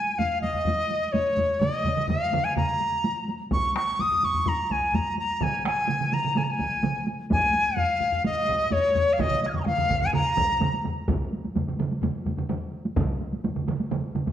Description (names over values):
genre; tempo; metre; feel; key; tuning
japanese traditional, taiko drum ensemble; 127 BPM; 4/4; straight; Eb suspended pentatonic; A4 = 440 Hz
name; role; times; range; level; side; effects
dizi; melody; 0.0-10.8 s; Db5 to Ab6; -24 LUFS; left 1 dB; none
taiko ensemble; percussion; 0.1-14.3 s; none; -31 LUFS; right 1 dB; none
taiko ensemble; percussion; 0.2-14.3 s; none; -32 LUFS; left 3 dB; none
taiko ensemble; percussion; 1.6-14.3 s; none; -30 LUFS; right 4 dB; none
taiko ensemble; percussion; 3.5-13.1 s; none; -31 LUFS; equal; none
room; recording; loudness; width
wet recital hall reverb, RT60 1.4 s; none; -23 LUFS; side -10 dB against mid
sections
0.0-11.1 A section; 11.1-14.3 B section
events
none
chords
none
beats
0.19 0.67 1.15 | 1.62 2.10 2.57 3.05 | 3.52 4.00 4.47 4.94 | 5.42 5.89 6.37 6.84 | 7.31 7.79 8.26 8.73 | 9.20 9.68 10.15 10.62 | 11.09 11.56 12.03 12.51 | 12.98 13.45 13.92